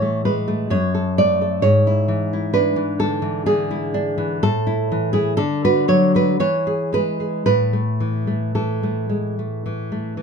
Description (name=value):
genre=romantic piece for solo classical guitar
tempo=54-67 BPM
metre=3/4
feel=rubato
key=A major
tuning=A4 = 440 Hz
part: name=nylon-string guitar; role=solo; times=0.0-10.2 s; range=F#2 to D5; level=-17 LUFS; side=equal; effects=none
room=light reverb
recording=close, detailed microphones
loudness=-17 LUFS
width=side -6 dB against mid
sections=0.0-10.2 A section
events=none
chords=0.0 A5; 0.8 D/F#; 1.7 E7/G#; 4.4 A5; 5.4 D; 6.4 E; 7.5 A5